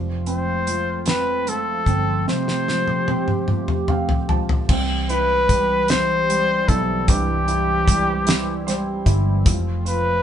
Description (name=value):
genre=six-eight pop ballad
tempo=50 BPM (dotted quarters)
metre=6/8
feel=straight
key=C major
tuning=A4 = 439 Hz
part: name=felt-muted upright piano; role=accompaniment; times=0.0-10.2 s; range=G2 to A5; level=-27 LUFS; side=right 3 dB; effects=none
part: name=chorused pulse-width pad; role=sustained chords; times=0.0-10.2 s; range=E3 to G4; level=-27 LUFS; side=right 1 dB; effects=none
part: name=vintage muted picked electric bass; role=bass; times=0.0-10.2 s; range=F1 to C2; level=-24 LUFS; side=equal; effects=none
part: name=warm flugelhorn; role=melody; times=0.3-10.2 s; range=G4 to C5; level=-21 LUFS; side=left 2 dB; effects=none
part: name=damped 70s drum kit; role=drums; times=0.3-10.0 s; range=crash cymbal, hi-hat, kick drum, snare drum, toms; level=-21 LUFS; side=equal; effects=none
room=moderate studio reverb, RT60 0.5 s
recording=band playing live in one room, nothing above 10.9 kHz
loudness=-18 LUFS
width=side -9 dB against mid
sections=0.0-4.7 A section; 4.7-10.2 B section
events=drum fill 2.3-4.7; felt piano fill 3.5-4.7, 8.3-9.5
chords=0.0 F; 4.7 C; 9.5 F